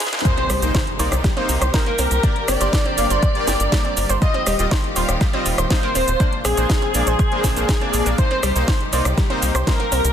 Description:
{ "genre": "progressive house", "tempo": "121 BPM", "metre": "4/4", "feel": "straight", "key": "C minor", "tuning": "A4 = 440 Hz", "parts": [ { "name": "wide unison lead", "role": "melody", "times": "0.0-10.1 s", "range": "Ab4 to Eb5", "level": "-24 LUFS", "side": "left 1 dB", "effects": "sidechain pumping, ping-pong delay" }, { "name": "airy dreamy lead", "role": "second line", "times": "0.0-10.1 s", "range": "Ab4 to Eb5", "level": "-30 LUFS", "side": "equal", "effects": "chorus, sidechain pumping, ping-pong delay" }, { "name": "rich studio string section", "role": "sustained chords", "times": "0.0-10.1 s", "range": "C3 to Bb4", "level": "-30 LUFS", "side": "equal", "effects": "sidechain pumping" }, { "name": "house drum kit", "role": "drums", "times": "0.0-10.1 s", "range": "cabasa, hi-hat, rim click, snare drum", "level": "-25 LUFS", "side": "equal", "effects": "overdrive" }, { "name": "riser and impact", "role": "sound effects", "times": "0.0-2.2 s", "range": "none", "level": "-29 LUFS", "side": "equal", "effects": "none" }, { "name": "analog pluck", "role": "arpeggios", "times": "0.1-10.0 s", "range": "G3 to C5", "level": "-27 LUFS", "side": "right 2 dB", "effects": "chorus, sidechain pumping, ping-pong delay" }, { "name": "soft supersaw", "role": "stabs", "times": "0.2-9.7 s", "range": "G3 to F5", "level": "-26 LUFS", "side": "left 1 dB", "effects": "sidechain pumping, ping-pong delay" }, { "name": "electronic kick drum", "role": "drums", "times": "0.3-9.8 s", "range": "none", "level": "-19 LUFS", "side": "equal", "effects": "overdrive" }, { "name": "tight sequencer bass", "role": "bass", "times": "0.5-10.1 s", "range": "Eb1 to C2", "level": "-22 LUFS", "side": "equal", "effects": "tube saturation, sidechain pumping" } ], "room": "little or no reverb", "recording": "dense, heavily limited modern master, high-pass filter", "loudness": "-16 LUFS", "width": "side -9 dB against mid", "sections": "0.3-10.1 A section", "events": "drum fill 0.0; riser 0.0; drop 0.3-10.1; impact 0.3-2.2", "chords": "0.3 Cm7; 2.2 Gm; 4.2 Ebadd9; 6.2 Bbadd9; 8.2 Cm7" }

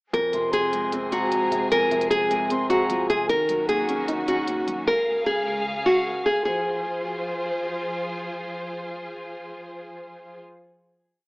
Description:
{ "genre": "hip hop, trap", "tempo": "152 BPM", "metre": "4/4", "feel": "half-time", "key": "F phrygian", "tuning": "A4 = 439 Hz", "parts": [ { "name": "nylon-string guitar", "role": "melody", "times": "0.1-7.6 s", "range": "Gb4 to Bb4", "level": "-23 LUFS", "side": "equal", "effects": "tape echo" }, { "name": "felt-muted upright piano", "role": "accompaniment", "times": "0.1-4.9 s", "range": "F2 to Eb4", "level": "-28 LUFS", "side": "equal", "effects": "none" }, { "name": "warm studio string section", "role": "sustained chords", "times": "0.1-10.4 s", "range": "Db2 to F5", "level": "-30 LUFS", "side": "equal", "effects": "none" }, { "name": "electronic hi-hat", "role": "drums", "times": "0.1-4.8 s", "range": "none", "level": "-38 LUFS", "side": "equal", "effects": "none" }, { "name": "reedy concert flute", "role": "second line", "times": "0.3-3.3 s", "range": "Ab5 to C6", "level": "-29 LUFS", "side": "equal", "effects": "tape echo" } ], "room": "light reverb", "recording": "echo-heavy mix, AM radio sound", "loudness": "-21 LUFS", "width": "side -31 dB against mid", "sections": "0.1-6.5 breakdown; 6.5-9.6 final chord", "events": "none", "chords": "0.1 Fm; 3.3 Ebm7; 4.9 Db; 6.5 Fm" }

